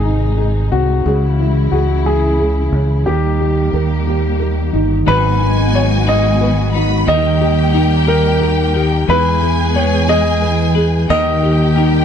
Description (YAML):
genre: six-eight pop ballad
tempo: 60 BPM (dotted quarters)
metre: 6/8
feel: straight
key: G# minor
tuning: A4 = 440 Hz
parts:
  - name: clear baby grand piano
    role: melody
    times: 0.0-12.0 s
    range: F#4 to D#5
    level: -19 LUFS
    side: equal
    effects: none
  - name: nylon-string guitar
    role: accompaniment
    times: 0.0-12.0 s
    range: G#2 to B4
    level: -18 LUFS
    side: equal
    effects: double-tracked left and right
  - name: warm studio string section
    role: sustained chords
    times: 0.0-12.0 s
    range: B#2 to G#4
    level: -23 LUFS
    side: equal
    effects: none
  - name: fingered electric bass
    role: bass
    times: 0.0-12.0 s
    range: G1 to E2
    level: -16 LUFS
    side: equal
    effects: none
  - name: warm studio violin section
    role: second line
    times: 5.1-12.0 s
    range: G5 to B5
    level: -23 LUFS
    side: right 1 dB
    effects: none
  - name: twelve-string electric guitar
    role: arpeggios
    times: 5.1-12.0 s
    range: G#2 to B4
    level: -23 LUFS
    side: left 15 dB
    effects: phaser, tape echo
room: little or no reverb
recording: dry, close 1970s-style studio recording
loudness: -12 LUFS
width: side -8 dB against mid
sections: 0.0-5.1 A section; 5.1-12.0 B section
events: none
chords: 0.0 G#; 1.1 C#m; 3.1 D#; 5.1 G#m7; 7.1 D#; 9.1 E; 11.1 D#